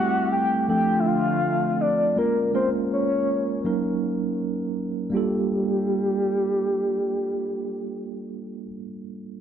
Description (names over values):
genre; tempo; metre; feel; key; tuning
R&B; 81 BPM; 4/4; straight; G minor; A4 = 440 Hz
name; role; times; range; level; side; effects
soft octave-layered synth lead; melody; 0.0-8.7 s; G4 to G5; -24 LUFS; left 2 dB; chorus, tremolo, ping-pong delay
mellow tine electric piano; accompaniment; 0.0-9.4 s; F3 to Bb4; -26 LUFS; right 3 dB; medium stereo tremolo
hollow soft pad; sustained chords; 0.0-2.2 s; D3 to G4; -29 LUFS; left 2 dB; chorus
room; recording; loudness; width
moderate lush hall reverb, RT60 2.5 s; dark, warm production; -21 LUFS; side -9 dB against mid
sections
0.0-5.1 A section; 5.1-8.1 B section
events
none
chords
0.0 Am7; 0.7 Dm7; 2.2 Bbm7; 3.6 Ebm7; 5.1 Gm9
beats
0.69 1.43 | 2.17 2.91 3.65 4.39 | 5.13 5.87 6.61 7.35